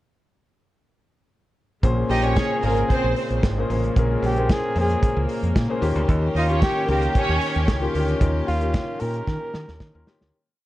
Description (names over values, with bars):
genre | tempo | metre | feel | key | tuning
disco | 113 BPM | 4/4 | straight | Bb dorian | A4 = 439 Hz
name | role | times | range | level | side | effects
warm concert grand piano | accompaniment | 1.8-10.4 s | Bb2 to Db5 | -26 LUFS | left 3 dB | none
clear studio string section | sustained chords | 1.8-10.3 s | Eb3 to G4 | -32 LUFS | equal | none
fingered electric bass | bass | 1.8-10.3 s | Ab1 to Eb3 | -23 LUFS | equal | none
warm soul drum kit | drums | 1.8-10.3 s | hi-hat, kick drum, snare drum | -23 LUFS | equal | none
warm flugelhorn | melody | 2.1-10.1 s | F4 to Bb4 | -26 LUFS | equal | none
warm studio violin section | second line | 2.1-7.6 s | Bb3 to Eb5 | -26 LUFS | right 2 dB | none
room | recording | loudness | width
light reverb, small room reverb | cassette tape | -19 LUFS | side -16 dB against mid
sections
1.8-10.3 verse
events
fade-out 8.2-10.3; drum fill 9.3-10.3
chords
1.8 Bbm9; 5.8 Eb7